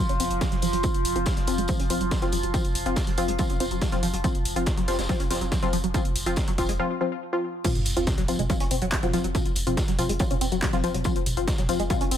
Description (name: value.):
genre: driving peak-time techno.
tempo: 141 BPM.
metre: 4/4.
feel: straight.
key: unclear.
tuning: A4 = 440 Hz.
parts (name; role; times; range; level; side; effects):
tight sequenced synth; riff; 0.0-12.2 s; F3 to Db4; -31 LUFS; equal; chorus, tube saturation, sidechain pumping, ping-pong delay.
overtone-sweeping drone; drone; 0.0-6.8 s; F3 to F4; -32 LUFS; right 1 dB; chorus, built-in reverb, sidechain pumping.
warm sub bass; bass; 0.1-12.2 s; F1; -31 LUFS; equal; sidechain pumping, low-pass filter.
techno drum kit; drums; 0.1-12.2 s; crash cymbal, handclaps, hi-hat, toms; -32 LUFS; equal; overdrive, sidechain pumping on hats, sidechain pumping on cymbals, sidechain pumping on toms.
vintage drum kit; drums; 0.2-12.2 s; hi-hat, snare drum, tambourine; -37 LUFS; equal; high-pass filter on hats, high-pass filter on snare, high-pass filter on perc, high-pass filter on room.
electronic kick drum; drums; 0.4-12.0 s; none; -27 LUFS; equal; overdrive.
filtered dub chord stab; stabs; 0.8-12.0 s; F3 to F4; -29 LUFS; left 2 dB; chorus, sidechain pumping, ping-pong delay.
sub drop; sound effects; 7.6-9.3 s; none; -35 LUFS; equal; none.
room: light reverb, digital ambience.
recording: none.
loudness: -23 LUFS.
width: side -10 dB against mid.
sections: 0.0-7.6 A section; 7.6-12.2 B section.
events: filter sweep on synth arpeggio sound 0.0-7.6; break 6.8-7.6; drop 7.6-12.2; impact 7.6-9.3.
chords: 0.0 F5.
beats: 0.41 | 0.84 1.26 1.69 2.11 | 2.54 2.96 3.39 3.82 | 4.24 4.67 5.09 5.52 | 5.94 6.37 6.79 7.22 | 7.65 8.07 8.50 8.92 | 9.35 9.77 10.20 10.62 | 11.05 11.47 11.90.